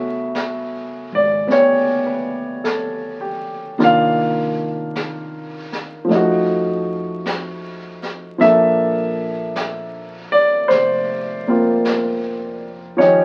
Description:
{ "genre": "jazz ballad", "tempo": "52 BPM", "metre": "4/4", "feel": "swing 69% on 8ths", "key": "unclear", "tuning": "A4 = 441 Hz", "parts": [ { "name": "warm grand piano", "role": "accompaniment", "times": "0.0-13.2 s", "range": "C#3 to F5", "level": "-19 LUFS", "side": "equal", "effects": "none" }, { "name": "upright bass", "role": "bass", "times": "0.0-13.2 s", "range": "F1 to F2", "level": "-37 LUFS", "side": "equal", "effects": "none" }, { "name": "jazz brush drum kit", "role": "drums", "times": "0.3-13.2 s", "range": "brushed snare drum, hi-hat, snare drum", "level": "-33 LUFS", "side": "equal", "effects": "none" } ], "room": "wet studio reverb, RT60 0.6 s", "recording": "very old 78 rpm record, vinyl crackle", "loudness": "-19 LUFS", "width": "mono", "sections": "0.0-13.2 A section", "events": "none", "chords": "0.0 Gmaj9#11; 3.8 Cm11; 6.1 F7b9; 8.4 Bbmaj7", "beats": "0.33 1.48 2.63 | 3.78 4.93 6.08 7.23 | 8.38 9.53 10.68 11.83 | 12.98" }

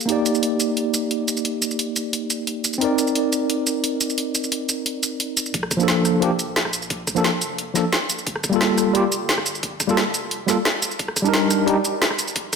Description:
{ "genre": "liquid drum and bass", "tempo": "176 BPM", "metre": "4/4", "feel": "straight", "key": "Bb major", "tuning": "A4 = 440 Hz", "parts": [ { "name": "bright tine electric piano", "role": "accompaniment", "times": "0.0-11.8 s", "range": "F3 to D5", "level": "-21 LUFS", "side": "equal", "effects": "medium stereo tremolo, low-pass filter, dub echo" }, { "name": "drum and bass drum kit", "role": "drums", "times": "0.0-12.6 s", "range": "hi-hat, rim click, shaker, snare drum", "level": "-22 LUFS", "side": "equal", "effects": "overdrive, studio reverb" }, { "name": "warm sub bass", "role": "bass", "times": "5.5-12.6 s", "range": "Eb1 to Bb1", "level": "-43 LUFS", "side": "equal", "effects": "none" }, { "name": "electronic kick drum", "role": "drums", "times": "5.5-12.6 s", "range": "none", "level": "-30 LUFS", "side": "left 1 dB", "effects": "overdrive, high-pass filter on kick, studio reverb" } ], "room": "moderate lush hall reverb, RT60 1.9 s", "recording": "none", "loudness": "-19 LUFS", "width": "side -5 dB against mid", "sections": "0.0-5.5 A section; 5.5-12.6 B section", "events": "filter sweep on tine electric piano 0.0-5.5; build-up 5.5-12.6", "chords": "0.1 Ebmaj7; 2.8 Cm9; 5.5 Bbmaj7; 8.3 Gm9; 11.0 Ebmaj7", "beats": "| 0.09 0.43 0.77 1.11 | 1.45 1.79 2.13 2.47 | 2.81 3.15 3.50 3.84 | 4.18 4.52 4.86 5.20 | 5.54 5.88 6.22 6.56 | 6.90 7.25 7.59 7.93 | 8.27 8.61 8.95 9.29 | 9.63 9.97 10.31 10.65 | 10.99 11.34 11.68 12.02 | 12.36" }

